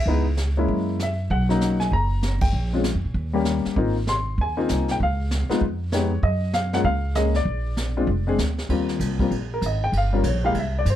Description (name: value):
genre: jazz piano trio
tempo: 195 BPM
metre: 4/4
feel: swing 63% on 8ths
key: unclear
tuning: A4 = 442 Hz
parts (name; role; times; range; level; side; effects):
- dark baby grand piano; melody; 0.0-11.0 s; F#3 to C6; -24 LUFS; left 2 dB; none
- upright bass; bass; 0.1-11.0 s; F1 to Bb2; -24 LUFS; equal; none
- jazz brush drum kit; drums; 0.1-10.9 s; brushed snare drum, crash cymbal, hi-hat, kick drum, ride cymbal, snare drum; -29 LUFS; right 2 dB; none
room: little or no reverb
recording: dark, warm production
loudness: -20 LUFS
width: side -12 dB against mid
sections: 0.0-8.7 A section; 8.7-11.0 B section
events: band accent 2.4; grand piano solo 8.7-11.0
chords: 0.1 Dbm7; 0.7 Gb7; 1.3 Bmaj7; 2.5 Bb5; 3.2 Eb7; 3.8 Ab6; 5.0 Db7; 6.2 Gbmaj9; 7.5 Bb7; 8.7 Eb69; 9.9 Gm7b5